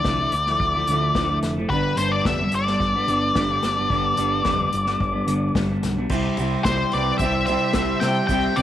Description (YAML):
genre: indie rock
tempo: 109 BPM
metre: 4/4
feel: straight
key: C major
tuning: A4 = 438 Hz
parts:
  - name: octave-fuzz lead guitar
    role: melody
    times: 0.0-8.6 s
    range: B4 to G5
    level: -22 LUFS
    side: left 2 dB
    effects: distortion, slapback echo
  - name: semi-hollow electric guitar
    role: riff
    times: 0.0-8.6 s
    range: G2 to G4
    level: -24 LUFS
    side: equal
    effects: double-tracked left and right
  - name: growling picked electric bass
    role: bass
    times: 0.0-8.6 s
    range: F1 to C3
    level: -28 LUFS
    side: equal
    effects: overdrive
  - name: unplugged drum kit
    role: drums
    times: 0.0-8.6 s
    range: crash cymbal, hi-hat, kick drum, ride cymbal, snare drum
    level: -28 LUFS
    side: left 2 dB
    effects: none
  - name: combo organ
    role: sustained chords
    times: 6.1-8.6 s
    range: G4 to D6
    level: -33 LUFS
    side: right 13 dB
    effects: lush chorus
  - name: tube shaker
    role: percussion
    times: 6.1-8.6 s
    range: none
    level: -43 LUFS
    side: right 13 dB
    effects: none
  - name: breathy trumpet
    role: second line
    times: 6.6-8.6 s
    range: G4 to E5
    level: -30 LUFS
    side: right 9 dB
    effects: none
room: moderate spring reverb, RT60 1.8 s, small room ambience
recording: 1960s-style stereo, vinyl crackle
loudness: -19 LUFS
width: side -12 dB against mid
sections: 0.0-6.1 A section; 6.1-8.6 B section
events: none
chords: 0.0 Dmadd9; 1.7 G; 6.1 C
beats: 0.06 0.61 1.16 | 1.71 2.26 2.81 3.36 | 3.91 4.46 5.01 5.55 | 6.10 6.65 7.20 7.75 | 8.30